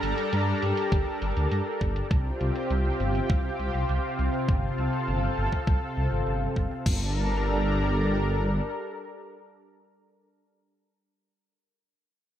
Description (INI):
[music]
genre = synthwave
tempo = 101 BPM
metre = 4/4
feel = straight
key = G minor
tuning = A4 = 440 Hz
[part]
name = analog string pad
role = sustained chords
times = 0.0-10.0 s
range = C3 to Bb4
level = -28 LUFS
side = left 1 dB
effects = ensemble chorus, sidechain pumping
[part]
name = dark detuned saw bass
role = bass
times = 0.0-8.6 s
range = G1 to G2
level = -27 LUFS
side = equal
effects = sidechain pumping
[part]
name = pop drum kit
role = drums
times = 0.0-7.0 s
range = crash cymbal, hi-hat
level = -41 LUFS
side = left 2 dB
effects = low-pass filter on hats, low-pass filter on toms, low-pass filter on snare, low-pass filter on cymbals
[part]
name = electronic kick drum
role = drums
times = 0.9-7.0 s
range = none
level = -26 LUFS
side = equal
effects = none
[sound]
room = moderate lush hall reverb, RT60 1.7 s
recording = bright 1980s-style digital production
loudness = -24 LUFS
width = side -11 dB against mid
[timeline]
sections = 0.0-6.9 A section; 6.9-9.2 B section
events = none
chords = 0.0 Gmadd9; 2.1 Csus4; 6.9 Gmadd9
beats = 0.33 0.92 1.51 | 2.11 2.70 3.30 3.89 | 4.48 5.08 5.67 6.27 | 6.86 7.45 8.05 8.64